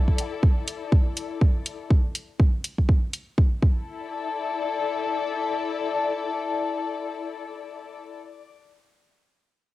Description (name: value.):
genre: minimal techno.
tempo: 122 BPM.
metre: 4/4.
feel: swing 57% on 16ths.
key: unclear.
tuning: A4 = 440 Hz.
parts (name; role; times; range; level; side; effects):
dark studio string section; texture; 0.0-8.5 s; E4 to D5; -28 LUFS; left 5 dB; sidechain pumping, cassette tape.
electronic kick drum; drums; 0.1-3.7 s; none; -19 LUFS; equal; studio reverb.
electronic hi-hat; drums; 0.2-3.2 s; none; -29 LUFS; equal; studio reverb.
room: light reverb.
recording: home recording on cassette.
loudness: -22 LUFS.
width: side -16 dB against mid.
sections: 0.0-3.9 A section; 3.9-7.8 B section.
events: none.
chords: 0.0 E7(no3); 3.6 Esus4; 3.9 E7sus4.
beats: 0.43 0.92 1.41 | 1.90 2.40 2.89 3.38 | 3.87 4.36 4.85 5.35 | 5.84 6.33 6.82 7.31.